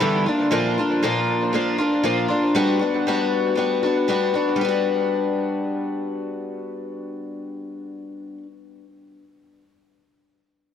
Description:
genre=rock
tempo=117 BPM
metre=4/4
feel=straight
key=G major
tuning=A4 = 440 Hz
part: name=picked twelve-string acoustic guitar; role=solo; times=0.0-8.5 s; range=G2 to F#4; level=-20 LUFS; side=left 2 dB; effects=analog delay
room=moderate echo chamber reverb, RT60 2.1 s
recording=echo-heavy mix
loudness=-19 LUFS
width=side -8 dB against mid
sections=0.0-4.6 A section; 4.6-8.7 B section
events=none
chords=0.3 Bb; 2.6 Gmaj7

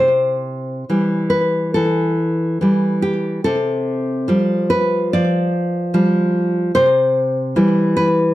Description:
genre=romantic piece for solo classical guitar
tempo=72 BPM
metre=4/4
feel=rubato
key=C major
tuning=A4 = 440 Hz
part: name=nylon-string guitar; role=solo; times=0.0-8.3 s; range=C3 to D5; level=-15 LUFS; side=equal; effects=slapback echo
room=light reverb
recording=dry, close 1970s-style studio recording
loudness=-15 LUFS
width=side -15 dB against mid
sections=0.0-8.3 A section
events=none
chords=0.0 C; 3.4 G5/C; 6.7 C

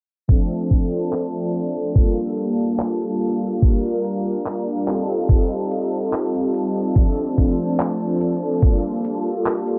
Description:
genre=vaporwave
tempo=72 BPM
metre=4/4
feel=straight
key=unclear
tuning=A4 = 440 Hz
part: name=mellow synth brass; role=accompaniment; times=0.3-9.8 s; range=F3 to Bb4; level=-24 LUFS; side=equal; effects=phaser, subtle chorus, analog delay
part: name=warbly tape-like pad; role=sustained chords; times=0.3-9.8 s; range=Bb3 to Bb5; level=-31 LUFS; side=equal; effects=chorus, built-in reverb
part: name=detuned 8-bit digital drum machine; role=drums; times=0.3-9.8 s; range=handclaps, hi-hat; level=-29 LUFS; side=equal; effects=none
part: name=electronic kick drum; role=drums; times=0.3-8.8 s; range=none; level=-18 LUFS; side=equal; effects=none
room=light reverb, digital ambience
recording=worn, warbling old tape, cassette tape, warbly pitch drift, low-pass filter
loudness=-21 LUFS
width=mono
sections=0.3-9.8 A section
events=filter sweep 0.3-9.8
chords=0.3 Dm7; 2.0 Gm9; 3.6 Bb6; 4.9 F9; 7.0 Dm7; 8.6 Gm9

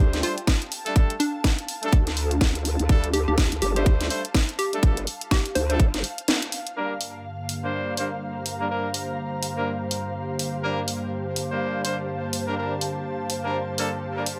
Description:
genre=bass house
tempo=124 BPM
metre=4/4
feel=swing 59% on 16ths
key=G minor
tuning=A4 = 440 Hz
part: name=bright horn section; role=stabs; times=0.0-14.2 s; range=G3 to C5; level=-32 LUFS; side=equal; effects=sidechain pumping, low-pass filter, delay
part: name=vowel-sweep wobble bass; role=bass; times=0.0-6.0 s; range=G1 to D2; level=-28 LUFS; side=equal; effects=chorus, overdrive, sidechain pumping
part: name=ethereal airy pad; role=texture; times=0.2-14.4 s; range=G4 to Bb5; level=-36 LUFS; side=equal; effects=ensemble chorus, built-in reverb, sidechain pumping
part: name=garage drum kit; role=drums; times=0.1-14.4 s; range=hi-hat, snare drum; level=-30 LUFS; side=equal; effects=none
part: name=hollow square pluck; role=melody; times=0.2-5.8 s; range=D4 to C5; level=-31 LUFS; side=equal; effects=chorus, delay
part: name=electronic kick drum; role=drums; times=0.5-5.9 s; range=none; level=-22 LUFS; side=equal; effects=none
part: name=sweeping resonant pad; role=sustained chords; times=6.8-14.4 s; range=G2 to Bb3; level=-34 LUFS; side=equal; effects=chorus, sidechain pumping
room=light reverb, digital ambience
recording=none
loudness=-25 LUFS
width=mono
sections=0.0-6.8 A section; 6.8-14.4 B section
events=band accent 6.3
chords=0.0 Dsus4; 6.8 Gm

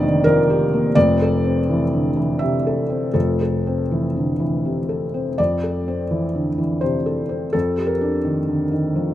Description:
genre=neoclassical minimalist piano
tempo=83 BPM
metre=3/4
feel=rubato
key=F major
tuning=A4 = 442 Hz
part: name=felt-muted upright piano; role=solo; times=0.0-9.1 s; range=F1 to E5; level=-18 LUFS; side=equal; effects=none
room=light reverb, small room ambience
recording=rough home demo mix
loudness=-18 LUFS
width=side -13 dB against mid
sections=0.0-5.4 A section; 5.4-9.1 B section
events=none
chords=0.0 Ebmaj7/F; 1.0 Fmaj7; 7.5 Ebmaj7/F

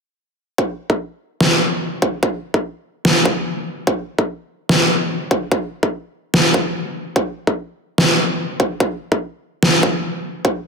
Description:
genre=heavy wobble dubstep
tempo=146 BPM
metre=4/4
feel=half-time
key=none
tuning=none
part: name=electronic kick drum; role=drums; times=0.6-10.5 s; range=none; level=-17 LUFS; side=equal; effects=overdrive, high-pass filter on kick, high-pass filter on room
part: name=electronic snare drum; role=drums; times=1.4-9.7 s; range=none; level=-16 LUFS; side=equal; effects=overdrive
room=wet lush hall reverb, RT60 1.6 s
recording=dense, heavily limited modern master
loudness=-17 LUFS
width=side -5 dB against mid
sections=0.6-10.7 A section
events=none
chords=none

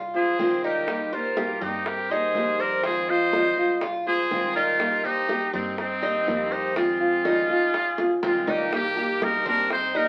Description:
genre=latin, Cuban son and guajira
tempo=122 BPM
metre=4/4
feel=straight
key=C minor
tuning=A4 = 439 Hz
part: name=Cuban tres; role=arpeggios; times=0.0-10.1 s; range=C4 to C5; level=-31 LUFS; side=equal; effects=none
part: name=upright bass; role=bass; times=0.0-10.1 s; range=C2 to G2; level=-46 LUFS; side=equal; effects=none
part: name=nylon-string guitar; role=accompaniment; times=0.1-10.1 s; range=C3 to G4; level=-29 LUFS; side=equal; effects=none
part: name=bongos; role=percussion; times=0.1-10.1 s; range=none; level=-36 LUFS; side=equal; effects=none
part: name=trumpet with metal mute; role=melody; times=0.2-10.1 s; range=C4 to C5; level=-28 LUFS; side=equal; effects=none
part: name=growling trumpet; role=second line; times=0.2-10.1 s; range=Ab3 to Eb5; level=-36 LUFS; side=equal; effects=none
room=wet studio reverb, RT60 0.6 s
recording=very old 78 rpm record, vinyl crackle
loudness=-24 LUFS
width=mono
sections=0.0-8.7 A section; 8.7-10.1 B section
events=drum fill 8.0-8.7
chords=0.0 Fm7; 0.9 Cm7; 2.8 Fm7; 4.8 Cm7; 6.8 Fm7; 8.7 Cm7

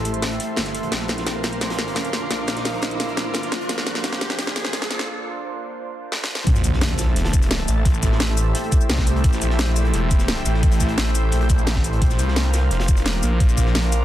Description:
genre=dark technical drum and bass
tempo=173 BPM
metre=4/4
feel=straight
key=A phrygian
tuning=A4 = 440 Hz
part: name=deep dark ambient pad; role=sustained chords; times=0.0-14.0 s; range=A3 to C5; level=-29 LUFS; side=right 1 dB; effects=chorus, built-in reverb, sidechain pumping
part: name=phased detuned saw bass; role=bass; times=0.0-14.0 s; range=E1 to C2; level=-22 LUFS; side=equal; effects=phaser, sidechain pumping
part: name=crunchy breakbeat drum kit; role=drums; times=0.0-14.0 s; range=hi-hat, snare drum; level=-35 LUFS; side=equal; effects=none
part: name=riser and impact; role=sound effects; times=0.1-7.9 s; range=none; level=-29 LUFS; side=equal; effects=none
part: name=airy breathy pad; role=texture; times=0.0-14.0 s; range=A4 to D6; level=-31 LUFS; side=equal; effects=chorus, sidechain pumping
part: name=drum and bass drum kit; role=drums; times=0.1-14.0 s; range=hi-hat, shaker, snare drum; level=-25 LUFS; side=equal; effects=soft clipping on snare
part: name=electronic kick drum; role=drums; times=6.5-13.6 s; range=none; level=-18 LUFS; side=equal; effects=none
room=light reverb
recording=dense, heavily limited modern master, high-pass filter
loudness=-18 LUFS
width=side -13 dB against mid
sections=0.0-6.5 A section; 6.5-14.0 B section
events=build-up 0.0-6.5; drum fill 0.0-5.1, 6.1-6.5; riser 0.1-5.1; break 5.1-6.5; drop 6.5-14.0; impact 6.5-7.9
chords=0.0 Am7; 0.9 Bbadd9; 6.5 Am7; 12.0 Bbadd9

